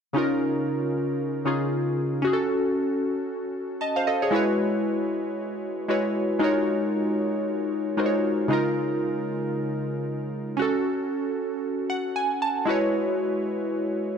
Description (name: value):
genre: amapiano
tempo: 115 BPM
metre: 4/4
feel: swing 58% on 16ths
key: Db major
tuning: A4 = 442 Hz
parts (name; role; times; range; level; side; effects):
- glassy digital keys; solo; 0.1-14.2 s; Db3 to A5; -23 LUFS; equal; chorus
room: light reverb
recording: none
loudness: -23 LUFS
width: side -7 dB against mid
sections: 0.2-14.2 A section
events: synth keys fill 11.6-12.7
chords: 0.2 Db69; 2.2 Gbm; 4.3 E69/G#; 6.4 Ab13sus4; 8.5 Db69; 10.6 Gbm; 12.7 E69/G#